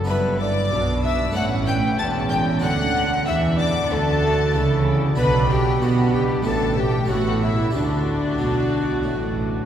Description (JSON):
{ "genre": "classical, baroque-style concerto movement with solo episodes", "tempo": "94 BPM", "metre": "4/4", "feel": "straight", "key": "D major", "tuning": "A4 = 440 Hz", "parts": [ { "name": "harpsichord", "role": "accompaniment", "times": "0.0-9.7 s", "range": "E2 to F#4", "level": "-31 LUFS", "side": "equal", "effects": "none" }, { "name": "mellow hollow tenor recorder", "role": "melody", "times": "0.1-9.7 s", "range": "D4 to A5", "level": "-24 LUFS", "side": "left 1 dB", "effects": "none" }, { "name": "warm chamber violin section", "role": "melody", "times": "0.1-9.7 s", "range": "D5 to A6", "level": "-30 LUFS", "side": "left 4 dB", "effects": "none" }, { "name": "rich chamber violin section", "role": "second line", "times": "0.1-9.6 s", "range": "D4 to A5", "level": "-29 LUFS", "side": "left 2 dB", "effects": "none" }, { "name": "warm chamber viola section", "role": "accompaniment", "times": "0.1-9.7 s", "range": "C#4 to F#4", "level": "-30 LUFS", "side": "right 2 dB", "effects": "none" }, { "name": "rich chamber cello section", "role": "bass", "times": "0.1-9.7 s", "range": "E2 to B3", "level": "-24 LUFS", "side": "right 2 dB", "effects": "none" }, { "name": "warm studio double bass section", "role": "bass", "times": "0.1-9.7 s", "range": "E1 to B2", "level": "-25 LUFS", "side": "right 2 dB", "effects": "none" } ], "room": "wet cathedral reverb, RT60 6.0 s", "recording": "heard from further back in the room", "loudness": "-18 LUFS", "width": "side -9 dB against mid", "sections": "0.0-9.7 A section", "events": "none", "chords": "0.1 Em7/G; 1.4 A; 2.6 D; 5.2 Bm; 6.5 D5/A; 7.1 A; 7.7 D" }